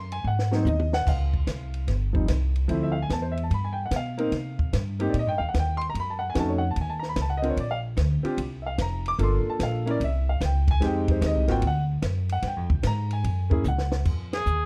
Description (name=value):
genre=jazz, small-group swing and bop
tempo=148 BPM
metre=4/4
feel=swing 66% on 8ths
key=unclear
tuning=A4 = 440 Hz
part: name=warm grand piano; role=accompaniment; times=0.0-14.0 s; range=F3 to D6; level=-31 LUFS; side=equal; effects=none
part: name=upright bass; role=bass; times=0.0-14.7 s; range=F1 to C3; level=-28 LUFS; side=equal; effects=none
part: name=compact cocktail drum kit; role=drums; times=0.1-14.6 s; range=crash cymbal, hi-hat, kick drum, ride cymbal, snare drum, toms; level=-31 LUFS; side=equal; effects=none
part: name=clear trumpet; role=melody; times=14.3-14.7 s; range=Ab4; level=-28 LUFS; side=equal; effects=none
room=light reverb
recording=dark, warm production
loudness=-26 LUFS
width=mono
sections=0.0-1.1 A section; 1.1-14.1 A section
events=drum fill 0.3-1.1, 13.7-14.1; band accent 14.3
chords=0.3 Ab9; 1.1 Dbmaj7#11; 2.7 Dm9; 3.5 G7; 4.3 Cm7; 5.9 F7b9b13; 7.6 Bbadd9; 9.2 Gm7; 10.0 Cadd11; 10.8 Fm9; 11.6 D; 12.4 Db6; 13.2 Gb9; 14.1 Fm7